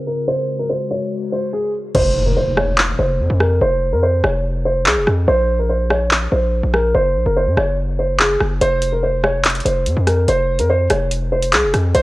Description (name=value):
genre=hip hop, drill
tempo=144 BPM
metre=4/4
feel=half-time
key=F phrygian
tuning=A4 = 441 Hz
part: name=dark concert grand piano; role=melody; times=0.0-12.0 s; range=Ab4 to Db5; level=-18 LUFS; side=right 1 dB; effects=low-pass filter
part: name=warbly tape-like pad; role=sustained chords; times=0.0-1.9 s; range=Db3 to Bb4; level=-26 LUFS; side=left 4 dB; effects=chorus, built-in reverb
part: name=distorted 808-style bass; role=bass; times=1.9-12.0 s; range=F1 to Gb2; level=-19 LUFS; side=equal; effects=distortion
part: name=drill drum kit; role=drums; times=1.9-12.0 s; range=crash cymbal, handclaps, hi-hat, rim click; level=-18 LUFS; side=equal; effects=none
part: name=impact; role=sound effects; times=1.9-3.6 s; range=none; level=-24 LUFS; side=equal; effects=none
room=digital ambience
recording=worn, warbling old tape, cassette tape, warbly pitch drift, low-pass filter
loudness=-15 LUFS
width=side -18 dB against mid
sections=0.0-1.9 A section; 1.9-12.0 B section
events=filter sweep 0.0-1.9; hi-hats muted 1.9-8.6; impact 1.9-3.6; filter sweep on grand piano 1.9-8.6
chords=0.3 Gbadd9; 1.9 F5; 5.3 Bbsus2; 6.9 N.C.; 8.6 F5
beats=| 0.28 0.70 1.11 1.53 | 1.95 2.36 2.78 3.20 | 3.61 4.03 4.45 4.86 | 5.28 5.70 6.11 6.53 | 6.95 7.36 7.78 8.20 | 8.61 9.03 9.45 9.86 | 10.28 10.70 11.11 11.53 | 11.95